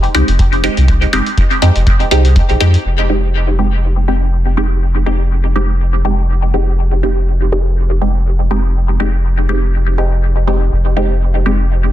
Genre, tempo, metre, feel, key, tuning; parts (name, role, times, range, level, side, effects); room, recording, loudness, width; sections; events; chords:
dub techno; 122 BPM; 4/4; swing 55% on 16ths; F minor; A4 = 440 Hz
soft dub sub bass; bass; 0.0-11.9 s; F1 to F2; -13 LUFS; equal; sidechain pumping
electronic hi-hat; drums; 0.0-2.8 s; -23 LUFS; left 3 dB; low-pass filter on hats, studio reverb
filtered dub chord stab; stabs; 0.1-11.6 s; Ab3 to G4; -17 LUFS; equal; phaser, sidechain pumping, dub echo
electronic kick drum; drums; 0.4-2.5 s; -13 LUFS; equal; studio reverb
little or no reverb; dense, heavily limited modern master; -11 LUFS; side -13 dB against mid
0.0-2.9 A section; 2.9-11.9 B section
0.0 Fm7